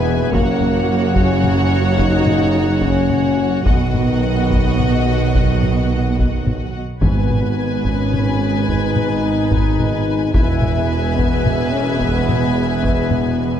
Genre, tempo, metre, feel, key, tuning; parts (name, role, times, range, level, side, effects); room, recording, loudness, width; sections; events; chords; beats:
cinematic, epic orchestral film score; 72 BPM (dotted quarters); 12/8; straight; G# minor; A4 = 439 Hz
warm studio violin section; melody; 0.0-13.6 s; F#5 to G#5; -28 LUFS; left 6 dB
rich symphonic violin section; second line; 0.0-13.6 s; B4 to E5; -28 LUFS; left 5 dB
rich symphonic viola section; accompaniment; 0.0-13.6 s; F#4 to B4; -28 LUFS; right 1 dB
bright trombone section; sustained chords; 0.0-13.6 s; B2 to G#3; -26 LUFS; right 4 dB
mellow French horn section; sustained chords; 0.0-13.6 s; A#3 to E4; -21 LUFS; left 5 dB
mellow tuba; bass; 0.0-13.5 s; E1 to B1; -24 LUFS; right 4 dB
rich symphonic double bass section; bass; 0.0-13.6 s; E1 to B1; -23 LUFS; right 3 dB
warm symphonic cello section; bass; 0.0-13.6 s; E2 to B2; -23 LUFS; right 4 dB
taiko ensemble; drums; 0.3-13.4 s; -21 LUFS; equal
timpani; percussion; 7.0-7.8 s; G#2; -22 LUFS; right 1 dB
moderate scoring stage reverb, RT60 1.6 s; dark, warm production; -14 LUFS; side -9 dB against mid
0.0-13.6 A section
0.3 F#; 3.7 B; 7.0 G#m; 10.3 E
| 0.33 1.15 1.98 2.81 | 3.65 4.50 5.34 6.18 | 7.03 7.86 8.69 9.52 | 10.35 11.17 12.00 12.83